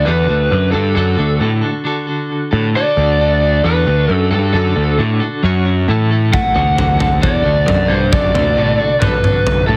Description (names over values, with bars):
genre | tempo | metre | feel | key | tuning
quiet-loud alternative rock | 134 BPM | 4/4 | straight | D major | A4 = 439 Hz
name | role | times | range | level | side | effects
lead guitar through a small cranked amp | melody | 0.0-9.8 s | A4 to F#5 | -19 LUFS | equal | overdrive
clean electric guitar | arpeggios | 0.0-9.8 s | A2 to C#5 | -23 LUFS | equal | tremolo, analog delay
fuzz picked electric bass | bass | 0.0-9.8 s | D2 to A2 | -17 LUFS | equal | overdrive
huge arena drum kit | drums | 6.3-9.6 s | kick drum, toms | -19 LUFS | equal | none
room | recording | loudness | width
light reverb, small room ambience | heavily compressed radio sound, multiband compression | -15 LUFS | mono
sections
0.0-9.8 A section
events
half time 0.0-9.8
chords
0.0 D; 5.4 F#5; 5.9 A5; 6.6 D